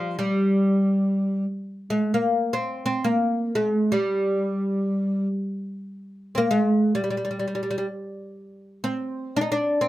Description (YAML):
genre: Persian modal ensemble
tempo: free time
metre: none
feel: none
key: G dastgah shur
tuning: A4 = 440 Hz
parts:
  - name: oud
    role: solo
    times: 0.0-9.9 s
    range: F3 to Eb4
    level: -22 LUFS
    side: equal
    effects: none
room: light reverb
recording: none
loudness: -22 LUFS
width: side -15 dB against mid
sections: 0.0-8.4 A section; 8.4-9.9 A section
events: none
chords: none